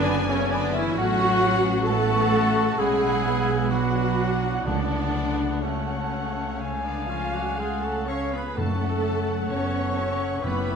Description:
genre	classical, slow romantic movement for symphony orchestra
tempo	60-67 BPM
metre	4/4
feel	rubato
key	F# minor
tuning	A4 = 440 Hz
part	warm symphonic violin section	melody	0.0-10.8 s	E5 to A5	-34 LUFS	left 3 dB	none
part	warm cor anglais	second line	0.0-10.8 s	A3 to A4	-36 LUFS	right 2 dB	none
part	warm symphonic violin section	second line	0.0-10.8 s	C#5 to C#6	-36 LUFS	left 2 dB	none
part	warm symphonic viola section	accompaniment	0.0-10.8 s	C#4 to C#5	-28 LUFS	equal	none
part	mellow French horn section	sustained chords	0.0-10.8 s	A3 to E4	-32 LUFS	left 4 dB	none
part	concert harp	arpeggios	0.0-10.8 s	F#2 to C#5	-36 LUFS	left 7 dB	none
part	warm trumpet	stabs	0.0-10.8 s	C#4 to C#5	-34 LUFS	right 2 dB	none
part	dark symphonic double bass section	bass	0.0-10.8 s	F#1 to C#2	-29 LUFS	right 4 dB	none
part	warm symphonic cello section	bass	0.0-10.8 s	C#3 to C#4	-31 LUFS	right 2 dB	none
part	timpani	percussion	0.0-10.8 s	F#2 to C#3	-32 LUFS	equal	none
part	clear clarinet	second line	0.1-10.8 s	E5 to G#5	-34 LUFS	left 1 dB	none
part	mellow large flute ensemble	second line	0.1-10.8 s	G#5 to C#6	-32 LUFS	left 1 dB	none
room	moderate scoring stage reverb, RT60 1.9 s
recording	minimal, uncompressed stereo recording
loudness	-22 LUFS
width	side -6 dB against mid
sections	0.0-10.8 A section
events	none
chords	0.0 G#dim/F#; 1.0 F#m/A; 2.8 Bm; 4.7 F#m/C#; 6.6 C#; 8.6 F#m

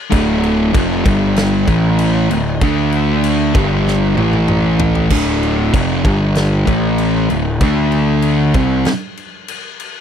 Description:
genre	stoner and doom metal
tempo	96 BPM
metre	4/4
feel	straight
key	D minor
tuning	A4 = 441 Hz
part	thick fuzz guitar	riff	0.1-8.9 s	D2 to D4	-14 LUFS	equal	distortion
part	fuzz picked electric bass	bass	0.1-8.8 s	D1 to D2	-19 LUFS	equal	overdrive
part	big rock drum kit	drums	0.1-9.9 s	crash cymbal, kick drum, snare drum, toms	-20 LUFS	equal	none
room	little or no reverb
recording	dry, close 1970s-style studio recording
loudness	-12 LUFS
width	side -8 dB against mid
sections	0.0-5.1 A section; 5.1-10.0 B section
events	drum fill 3.9-5.1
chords	0.0 Dm; 1.1 G5; 1.7 A5; 2.3 D5; 3.6 G5; 4.2 A5; 5.1 Dm; 6.1 G5; 6.7 A5; 7.3 D5

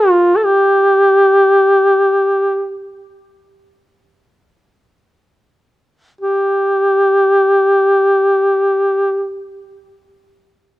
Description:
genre	caucasian folk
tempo	free time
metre	none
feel	none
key	unclear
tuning	A4 = 440 Hz
part	mellow duduk	melody	0.0-9.4 s	F4 to A4	-11 LUFS	equal	none
room	moderate plate reverb, RT60 2.4 s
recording	dry, close 1970s-style studio recording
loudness	-10 LUFS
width	side -16 dB against mid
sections	0.0-6.2 A section; 6.2-10.4 B section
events	slowing down 0.0-6.2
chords	none

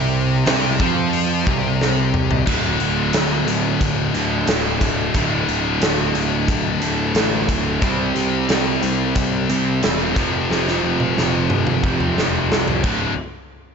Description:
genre	hard rock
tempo	90 BPM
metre	4/4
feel	straight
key	D minor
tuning	A4 = 438 Hz
part	overdriven electric guitar	riff	0.0-13.1 s	D2 to C4	-22 LUFS	right 11 dB	none
part	scooped high-gain guitar	riff	0.0-13.1 s	D2 to C4	-22 LUFS	left 11 dB	distortion
part	fuzz picked electric bass	bass	0.0-13.2 s	D1 to F2	-24 LUFS	equal	overdrive
part	big rock drum kit	drums	0.5-13.0 s	crash cymbal, hi-hat, kick drum, snare drum, toms	-22 LUFS	equal	none
room	small room reverb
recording	nothing above 7.7 kHz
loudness	-16 LUFS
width	side -6 dB against mid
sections	0.0-2.5 A section; 2.5-13.2 B section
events	drum fill 1.8-2.5, 10.5-13.2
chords	0.0 Csus4; 2.5 D5; 7.8 C; 10.2 F5; 12.9 D5; 13.2 N.C.

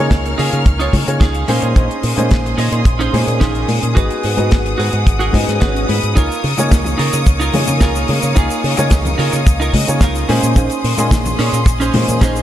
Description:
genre	nu-disco, nu disco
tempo	109 BPM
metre	4/4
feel	straight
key	Db major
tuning	A4 = 440 Hz
part	clear baby grand piano	accompaniment	0.0-12.4 s	Ab3 to C6	-21 LUFS	equal	sidechain pumping, analog delay
part	clear studio string section	sustained chords	0.0-12.4 s	Db4 to F6	-23 LUFS	equal	sidechain pumping
part	fingered electric bass with an envelope filter	bass	0.0-12.4 s	Ab1 to Db3	-18 LUFS	equal	none
part	damped 70s drum kit	drums	0.1-12.4 s	hi-hat, rim click, shaker, snare drum	-24 LUFS	left 2 dB	small room ambience
part	kick drum	drums	0.1-12.3 s	none	-12 LUFS	equal	small room ambience
part	clean electric guitar	riff	0.2-12.4 s	Db4 to Ab5	-22 LUFS	right 4 dB	lush chorus, vintage 12-bit sampler grit, analog delay
part	congas	percussion	0.9-12.2 s	none	-23 LUFS	left 2 dB	none
part	swell	sound effects	5.2-6.2 s	none	-27 LUFS	equal	none
room	light reverb, small room ambience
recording	lossy compression artefacts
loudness	-12 LUFS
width	side -12 dB against mid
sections	0.0-12.4 A section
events	clean electric guitar fill 5.1-6.2, 9.5-10.6; swell 5.2-6.2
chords	0.0 Db69; 1.5 Bbm11; 4.0 Abm7; 6.2 Db69; 10.3 Bbm11

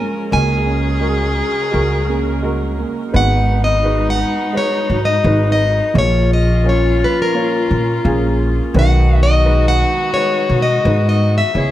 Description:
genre	acoustic folk-pop ballad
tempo	86 BPM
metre	4/4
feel	straight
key	G# minor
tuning	A4 = 438 Hz
part	picked plugged-in steel-string acoustic guitar	melody	0.0-11.7 s	A#4 to G#5	-18 LUFS	left 2 dB	none
part	warm viola	second line	0.0-11.7 s	D#4 to A#4	-22 LUFS	left 3 dB	none
part	warm upright piano	accompaniment	0.0-11.7 s	G#1 to C#5	-24 LUFS	equal	none
part	warm studio string section	sustained chords	0.0-11.7 s	C#3 to B4	-29 LUFS	right 2 dB	none
part	felt-muted upright piano	arpeggios	0.0-11.6 s	D#3 to G#4	-23 LUFS	right 4 dB	none
part	upright bass	bass	0.3-11.7 s	G#1 to B2	-16 LUFS	equal	none
room	light reverb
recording	close, detailed microphones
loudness	-13 LUFS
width	side -13 dB against mid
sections	0.0-3.1 A section; 3.1-11.7 B section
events	none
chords	0.3 F#add9/C#; 3.1 G#m7; 5.9 A#m; 8.7 B6

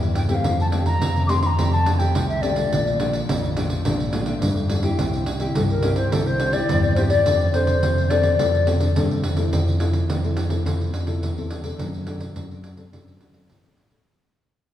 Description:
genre	samba and choro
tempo	106 BPM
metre	4/4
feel	straight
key	F major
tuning	A4 = 440 Hz
part	nylon-string guitar	accompaniment	0.0-14.0 s	F2 to A4	-26 LUFS	left 2 dB	none
part	modern bright fingered electric bass	bass	0.0-14.0 s	A1 to G2	-22 LUFS	equal	none
part	pandeiro	percussion	0.0-14.1 s	none	-27 LUFS	right 2 dB	none
part	mellow wooden flute	melody	0.2-8.7 s	A4 to D6	-23 LUFS	left 3 dB	none
room	wet concert hall reverb, RT60 2.4 s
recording	recorded in a church or concert hall, small room ambience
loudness	-19 LUFS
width	side -11 dB against mid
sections	0.0-9.5 A section; 9.5-14.1 B section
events	fade-out 9.5-14.1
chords	0.5 Fadd9; 2.7 Bbmaj7; 5.0 C; 7.3 F6; 9.5 Fmaj7; 11.8 D7/F#

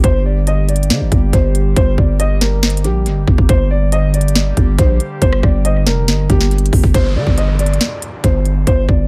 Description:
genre	hip hop, trap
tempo	139 BPM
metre	4/4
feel	half-time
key	G minor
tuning	A4 = 440 Hz
part	dark grand piano	melody	0.0-9.0 s	G4 to Eb5	-24 LUFS	equal	low-pass filter, dub echo
part	warbly tape-like pad	sustained chords	0.0-6.9 s	D3 to G4	-28 LUFS	equal	chorus, built-in reverb, phaser
part	growling 808-style bass	bass	0.0-9.1 s	F1 to D3	-17 LUFS	equal	none
part	trap drum kit	drums	0.0-9.0 s	hi-hat, kick drum, rim click, snare drum	-17 LUFS	equal	none
part	downlifter	sound effects	6.9-9.1 s	none	-30 LUFS	equal	none
room	little or no reverb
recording	echo-heavy mix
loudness	-14 LUFS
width	mono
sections	0.0-6.9 A section; 6.9-9.1 B section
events	none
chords	0.0 Gm; 6.9 G5

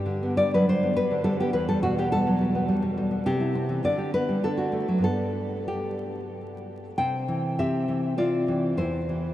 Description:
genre	romantic piece for solo classical guitar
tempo	91-108 BPM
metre	3/4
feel	rubato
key	G major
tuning	A4 = 440 Hz
part	nylon-string guitar	solo	0.0-9.3 s	E2 to G5	-23 LUFS	equal	none
room	wet huge ambient reverb, RT60 7.8 s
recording	in a vast, echoing space, vinyl crackle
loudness	-23 LUFS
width	side -13 dB against mid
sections	0.0-7.0 A section; 7.0-9.3 B section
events	none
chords	0.0 G; 1.5 Em; 3.2 C; 3.8 G/D; 4.4 D; 5.0 G; 7.0 C; 8.8 C/E

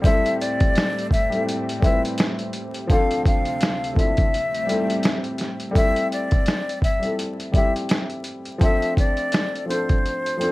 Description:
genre	lo-fi hip hop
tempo	84 BPM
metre	4/4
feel	swing 58% on 16ths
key	A minor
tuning	A4 = 440 Hz
part	breathy jazz flute	melody	0.0-10.5 s	C5 to F5	-25 LUFS	left 2 dB	plate reverb
part	warm upright piano	accompaniment	0.0-10.5 s	F3 to B4	-26 LUFS	left 1 dB	plate reverb
part	lush unison pad	sustained chords	0.0-5.7 s	D2 to C4	-32 LUFS	right 1 dB	chorus
part	dusty soul sampler-style drum kit	drums	0.0-10.5 s	hi-hat, kick drum, snare drum	-21 LUFS	equal	none
room	moderate small room reverb, RT60 0.5 s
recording	vinyl crackle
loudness	-19 LUFS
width	side -19 dB against mid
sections	0.0-5.8 A section; 5.8-10.5 B section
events	none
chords	0.0 Am7; 2.9 Dm7; 4.3 Am7; 8.6 Dm7

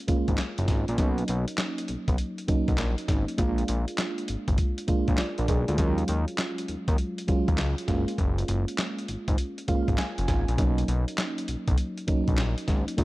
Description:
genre	R&B, new jack swing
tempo	100 BPM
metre	4/4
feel	swing 66% on 16ths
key	unclear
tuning	A4 = 440 Hz
part	FM electric piano with tremolo	accompaniment	0.0-13.0 s	F#3 to Ab5	-30 LUFS	right 2 dB	none
part	fat analog bass	bass	0.1-13.0 s	Gb1 to Eb2	-28 LUFS	equal	none
part	dusty soul sampler-style drum kit	drums	0.1-13.0 s	handclaps, hi-hat, kick drum, snare drum	-27 LUFS	equal	none
room	digital ambience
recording	dark, warm production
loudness	-24 LUFS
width	side -18 dB against mid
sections	0.0-13.0 A section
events	FM electric piano fill 9.4-10.6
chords	0.0 Gbmaj9; 1.0 Bmaj9; 3.4 Bb7; 5.8 Ebm11; 7.9 Gbmaj9; 10.6 Bmaj9

